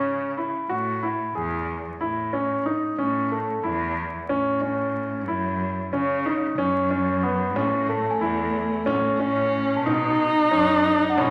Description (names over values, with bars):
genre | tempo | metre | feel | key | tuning
contemporary instrumental, chamber music in an uneven meter | 183 BPM (eighths) | 7/8 | straight | A lydian | A4 = 441 Hz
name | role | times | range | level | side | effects
clear baby grand piano | arpeggios | 0.0-11.3 s | A3 to G#4 | -27 LUFS | equal | none
clear cello | bass | 0.0-11.3 s | E2 to C#3 | -32 LUFS | equal | none
dark viola | second line | 7.6-11.3 s | A3 to D#4 | -25 LUFS | equal | none
frame drum | percussion | 7.6-11.3 s | none | -37 LUFS | equal | none
celesta | texture | 8.1-11.3 s | F#5 to B5 | -34 LUFS | equal | none
room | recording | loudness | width
wet recital hall reverb, RT60 1.6 s | vinyl crackle | -24 LUFS | mono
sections
0.0-3.0 A section; 3.0-11.3 B section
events
none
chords
0.0 C#m; 0.7 Amaj7; 3.0 A; 5.3 F#5; 7.6 Amaj7; 9.9 B7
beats
0.04 0.37 | 0.69 1.02 1.35 1.68 2.00 2.33 2.66 | 2.99 3.31 3.64 3.97 4.30 4.62 4.95 | 5.28 5.61 5.93 6.26 6.59 6.92 7.24 | 7.57 7.90 8.22 8.55 8.88 9.21 9.53 | 9.86 10.19 10.52 10.84 11.17